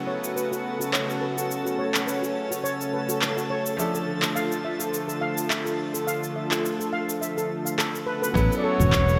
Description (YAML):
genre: sunset chillout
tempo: 105 BPM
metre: 4/4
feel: swing 54% on 16ths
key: A major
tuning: A4 = 440 Hz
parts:
  - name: bright concert grand piano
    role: accompaniment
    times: 0.0-9.2 s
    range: F3 to A4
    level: -37 LUFS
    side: equal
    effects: delay
  - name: lush unison pad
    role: sustained chords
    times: 0.0-9.2 s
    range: C#3 to F#4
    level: -31 LUFS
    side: equal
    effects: chorus
  - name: steel pan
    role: arpeggios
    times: 0.0-9.2 s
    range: F#4 to F5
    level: -34 LUFS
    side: equal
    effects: low-pass filter, delay
  - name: twinkling granular texture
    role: texture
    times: 0.0-8.4 s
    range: A4 to A5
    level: -39 LUFS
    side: equal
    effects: built-in reverb
  - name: deep house drum kit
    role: drums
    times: 0.2-9.2 s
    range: handclaps, shaker, toms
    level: -31 LUFS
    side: equal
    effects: overdrive
  - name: breathy flugelhorn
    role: melody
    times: 8.4-9.2 s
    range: B4 to D5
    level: -27 LUFS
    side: equal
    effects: none
  - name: sustaining fretless electric bass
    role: bass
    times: 8.4-9.2 s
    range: E1 to A1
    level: -24 LUFS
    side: equal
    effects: none
  - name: electronic kick drum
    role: drums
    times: 8.4-9.0 s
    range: none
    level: -30 LUFS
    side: equal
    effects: overdrive
room: wet lush hall reverb, RT60 2.9 s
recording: none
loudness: -26 LUFS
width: mono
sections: 0.0-8.4 A section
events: filter sweep on steel pan 0.0-8.4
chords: 0.0 A69; 3.8 Dmadd9; 8.1 A69